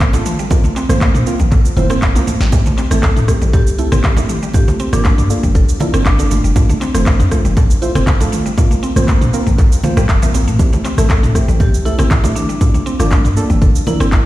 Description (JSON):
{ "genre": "afro house", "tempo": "119 BPM", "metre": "4/4", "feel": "swing 53% on 16ths", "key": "A phrygian", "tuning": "A4 = 440 Hz", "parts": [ { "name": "deep mellow chord stab", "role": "stabs", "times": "0.0-14.2 s", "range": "F3 to C5", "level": "-22 LUFS", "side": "right 2 dB", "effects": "chorus, sidechain pumping, dub echo" }, { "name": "electronic kick drum", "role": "drums", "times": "0.0-14.2 s", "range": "none", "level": "-13 LUFS", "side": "equal", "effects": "none" }, { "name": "house drum kit", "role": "drums", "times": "0.0-14.2 s", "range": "handclaps, rim click, shaker, snare drum, toms", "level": "-21 LUFS", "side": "equal", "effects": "none" }, { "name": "congas", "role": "percussion", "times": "0.0-14.0 s", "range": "none", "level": "-22 LUFS", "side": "right 2 dB", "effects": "none" }, { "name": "mallet-like synth pluck", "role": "arpeggios", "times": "0.1-14.1 s", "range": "E3 to A4", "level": "-23 LUFS", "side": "equal", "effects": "chorus, cassette tape, sidechain pumping, dub echo" }, { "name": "warm 808-style bass", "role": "bass", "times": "0.9-14.3 s", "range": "F1 to Bb2", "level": "-16 LUFS", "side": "equal", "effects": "sidechain pumping" }, { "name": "marimba with medium hard mallets", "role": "melody", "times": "2.9-6.3, 11.0-14.3 s", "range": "D4 to A4", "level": "-25 LUFS", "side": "left 2 dB", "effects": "dub echo" } ], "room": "light reverb, digital ambience", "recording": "played on a big sound system in a bare room, stone room reverb", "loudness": "-11 LUFS", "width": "side -16 dB against mid", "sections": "0.0-14.3 A section", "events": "drum fill 2.0-2.5", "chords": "0.0 F; 0.5 Bbsus2; 2.5 Am7; 4.5 Gm7; 6.6 F; 8.6 Bbsus2; 10.6 Am7; 12.6 Gm7", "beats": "0.01 | 0.51 1.01 1.52 2.02 | 2.53 3.03 3.53 4.04 | 4.54 5.05 5.55 6.05 | 6.56 7.06 7.57 8.07 | 8.58 9.08 9.58 10.09 | 10.59 11.10 11.60 12.11 | 12.61 13.11 13.62 14.12" }